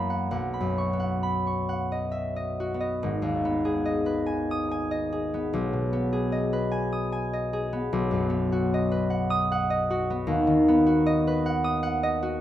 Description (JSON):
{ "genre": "classical, solo harp piece", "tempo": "65-78 BPM", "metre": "3/4", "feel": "rubato", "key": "B major, G# minor from 3.0 s", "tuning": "A4 = 441 Hz", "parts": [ { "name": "concert harp", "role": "solo", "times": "0.0-12.4 s", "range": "G#1 to D#6", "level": "-24 LUFS", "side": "equal", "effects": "none" } ], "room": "light reverb", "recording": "close, detailed microphones", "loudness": "-24 LUFS", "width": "side -12 dB against mid", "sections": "0.0-3.0 A section; 3.0-12.4 B section", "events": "none", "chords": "0.3 B; 3.0 G#m; 5.5 G#m/B; 7.9 B; 10.3 B/D#" }